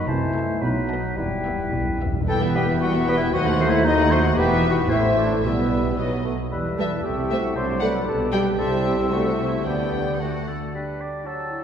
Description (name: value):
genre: quick classical-period movement for symphony orchestra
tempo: 106-118 BPM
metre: 2/4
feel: rubato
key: E minor, G major from 6.5 s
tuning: A4 = 439 Hz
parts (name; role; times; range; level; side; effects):
- concert flute; second line; 0.0-11.6 s; B4 to C6; -31 LUFS; left 2 dB; none
- warm clarinet; second line; 0.0-11.6 s; B3 to C5; -28 LUFS; left 1 dB; none
- warm oboe; second line; 0.0-11.6 s; F#4 to G5; -32 LUFS; equal; none
- mellow bassoon; accompaniment; 0.0-11.6 s; E3 to B3; -31 LUFS; right 1 dB; none
- mellow French horn section; sustained chords; 0.0-10.5 s; F#3 to G4; -29 LUFS; left 3 dB; none
- rich chamber double bass section; bass; 0.1-10.5 s; E1 to D#2; -29 LUFS; right 1 dB; none
- warm chamber cello section; bass; 0.1-10.5 s; D#2 to D3; -27 LUFS; right 2 dB; none
- rich chamber violin section; melody; 0.3-10.5 s; D#5 to G5; -33 LUFS; left 4 dB; none
- warm chamber violin section; second line; 0.3-10.5 s; F#4 to D5; -34 LUFS; left 1 dB; none
- rich studio viola section; accompaniment; 0.4-10.5 s; F#3 to B3; -30 LUFS; right 1 dB; none
- timpani; percussion; 1.2-2.3, 9.7-10.2 s; E2 to D3; -30 LUFS; right 1 dB; none
- mellow trumpet section; stabs; 2.3-10.3 s; A4 to D5; -31 LUFS; right 2 dB; none
room: wet concert hall reverb, RT60 2.3 s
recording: heard from further back in the room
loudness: -20 LUFS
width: side -8 dB against mid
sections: 0.0-2.3 A section; 2.3-10.7 B section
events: timpani fill 1.2-2.3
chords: 0.1 Am/C; 0.6 B; 1.2 Em; 3.3 D#dim7; 4.4 Em; 4.9 Am; 5.4 Em/B; 6.0 B; 6.5 Em; 7.0 Am/C; 7.6 D7/C; 8.1 G/B; 8.6 C; 9.1 Am/C; 9.7 G/D; 10.2 D; 10.7 G